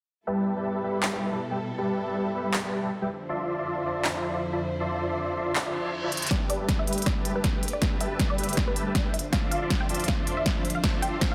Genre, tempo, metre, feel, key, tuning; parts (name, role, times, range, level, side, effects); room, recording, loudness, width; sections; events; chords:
future bass; 159 BPM; 4/4; swing 55% on 16ths, half-time; G mixolydian; A4 = 441 Hz
warm symphonic string section; sustained chords; 0.3-11.3 s; F2 to C5; -38 LUFS; equal; sidechain pumping
dense compressed supersaw; riff; 0.3-11.3 s; G3 to C6; -32 LUFS; equal; sidechain pumping, low-pass filter
big-room dance drum kit; drums; 1.0-11.3 s; handclaps, hi-hat, snare drum; -32 LUFS; equal; overdrive
reverse cymbal; sound effects; 5.7-6.3 s; -36 LUFS; equal
unison pluck; melody; 6.3-11.3 s; B4 to G5; -37 LUFS; equal; sidechain pumping, digital delay
electronic kick drum; drums; 6.3-11.3 s; -30 LUFS; equal; overdrive
moderate lush hall reverb, RT60 2.1 s; dense, heavily limited modern master; -28 LUFS; mono
0.3-6.3 A section; 6.3-11.3 B section
reverse cymbal 5.7-6.3; drum fill 6.1, 6.3-11.3; build-up 6.3-11.3; filter sweep on supersaw synth 6.3-11.3; filter sweep on synth pluck 6.3-11.3
0.3 G69; 3.1 Dm9/F; 6.3 G69; 9.1 Dm9/F